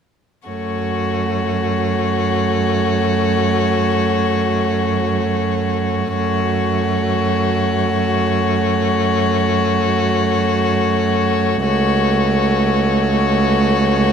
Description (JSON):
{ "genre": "classical, slow romantic movement for string quartet", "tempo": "free time", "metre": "none", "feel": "none", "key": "F# minor", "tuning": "A4 = 440 Hz", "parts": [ { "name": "rich violin", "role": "melody", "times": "0.5-14.1 s", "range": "C#5", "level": "-23 LUFS", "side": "left 14 dB", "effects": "none" }, { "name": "rich violin", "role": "second line", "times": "0.5-14.1 s", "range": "F#4", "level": "-21 LUFS", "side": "left 3 dB", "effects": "none" }, { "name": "clear viola", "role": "accompaniment", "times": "0.5-14.1 s", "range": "A3", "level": "-20 LUFS", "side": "right 1 dB", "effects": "none" }, { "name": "rich cello", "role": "bass", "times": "0.5-14.1 s", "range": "C#2 to F#2", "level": "-20 LUFS", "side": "right 5 dB", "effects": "none" } ], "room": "light reverb", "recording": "none", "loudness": "-15 LUFS", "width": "side -7 dB against mid", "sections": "0.5-14.1 A section", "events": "none", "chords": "0.5 F#m; 11.6 F#m/C#", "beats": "free time" }